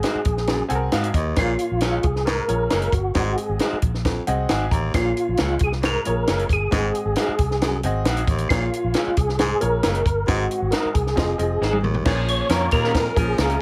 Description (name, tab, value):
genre	uptempo 1960s-style soul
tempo	135 BPM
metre	4/4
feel	straight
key	Bb minor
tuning	A4 = 440 Hz
part	percussive tonewheel organ	melody	0.0-13.6 s	F4 to Db5	-26 LUFS	equal	chorus vibrato, fast rotary speaker, plate reverb
part	clear upright piano	accompaniment	0.0-13.6 s	Ab2 to Bb5	-31 LUFS	equal	plate reverb
part	electric guitar through a small old amp	stabs	0.0-13.5 s	Db4 to Db5	-31 LUFS	equal	spring reverb, plate reverb
part	compact cocktail drum kit	drums	0.0-13.6 s	crash cymbal, hi-hat, kick drum, snare drum, toms	-26 LUFS	equal	none
part	vintage muted fingered electric bass	bass	0.1-13.6 s	F1 to Bb2	-27 LUFS	equal	none
part	bright baritone saxophone	riff	0.5-13.1 s	Eb2 to Bb2	-30 LUFS	equal	none
part	bright saxophone section	second line	12.1-13.6 s	F3 to Bb4	-33 LUFS	equal	plate reverb, tape echo
room	light reverb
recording	none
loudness	-21 LUFS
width	mono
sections	0.0-12.1 A section; 12.1-13.6 B section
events	upright piano fill 0.5-1.4, 4.0-4.9; drum fill 11.6-12.1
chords	0.0 Ab7; 1.4 Bbm7; 3.2 Ab7; 4.9 Bbm7; 6.7 Ab7; 8.5 Bbm7; 10.3 Ab7; 11.2 Fm7; 12.1 Bbm